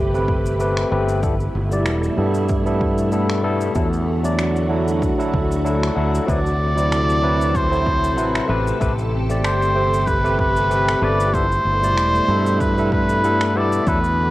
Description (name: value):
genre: sunset chillout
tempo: 95 BPM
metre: 4/4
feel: swing 55% on 16ths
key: unclear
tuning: A4 = 438 Hz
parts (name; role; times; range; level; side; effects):
- barky tine electric piano; accompaniment; 0.0-14.0 s; B2 to D5; -22 LUFS; moving between left 3 dB and right 3 dB; auto-pan, low-pass filter, cassette tape, analog delay
- soft string machine; sustained chords; 0.0-14.3 s; B2 to B4; -25 LUFS; equal; ensemble chorus, cassette tape
- fretless electric bass; bass; 0.0-14.3 s; E1 to G2; -21 LUFS; equal; none
- electronic cabasa and finger snaps; drums; 0.1-14.2 s; none; -31 LUFS; equal; overdrive, studio reverb, cassette tape
- electronic kick drum; drums; 0.3-14.0 s; none; -24 LUFS; equal; overdrive, studio reverb, cassette tape
- trumpet with cup mute; melody; 6.3-14.3 s; B4 to D5; -20 LUFS; equal; analog delay
room: moderate spring reverb, RT60 2.1 s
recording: home recording on cassette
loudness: -16 LUFS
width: side -16 dB against mid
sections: 0.0-14.3 A section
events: filter sweep on tine electric piano 0.0-14.3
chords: 0.0 Am9; 1.2 G69; 3.8 E9sus4; 6.3 D13; 8.5 Am9; 11.3 G69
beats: 0.60 | 1.23 1.86 2.50 3.13 | 3.76 4.39 5.02 5.65 | 6.29 6.92 7.55 8.18 | 8.81 9.44 10.07 10.71 | 11.34 11.97 12.60 13.23 | 13.86